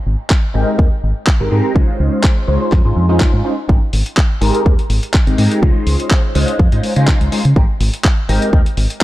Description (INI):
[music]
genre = filtered disco house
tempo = 124 BPM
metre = 4/4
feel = swing 54% on 16ths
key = Ab major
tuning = A4 = 441 Hz
[part]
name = deep dub fingered electric bass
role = bass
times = 0.1-8.9 s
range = Ab1 to Db3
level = -15 LUFS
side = equal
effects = sidechain pumping, low-pass filter
[part]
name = dusty soul sampler-style drum kit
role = drums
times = 0.3-9.0 s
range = handclaps, hi-hat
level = -22 LUFS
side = equal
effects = sidechain pumping on hats
[part]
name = electronic kick drum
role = drums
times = 0.3-8.6 s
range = none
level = -13 LUFS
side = equal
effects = none
[part]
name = funky polysynth comp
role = accompaniment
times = 0.5-8.6 s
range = Ab3 to C5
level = -18 LUFS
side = equal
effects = chorus, phaser, sidechain pumping, low-pass filter
[sound]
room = little or no reverb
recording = dark, warm production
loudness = -12 LUFS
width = side -16 dB against mid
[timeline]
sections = 0.0-9.0 A section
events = none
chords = 0.0 Abmaj9; 1.8 Dbmaj9; 3.7 Abmaj9; 5.6 Dbmaj9; 7.6 Abmaj9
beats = 0.30 0.79 1.27 | 1.75 2.24 2.72 3.21 | 3.69 4.17 4.66 5.14 | 5.63 6.11 6.59 7.08 | 7.56 8.05 8.53 9.01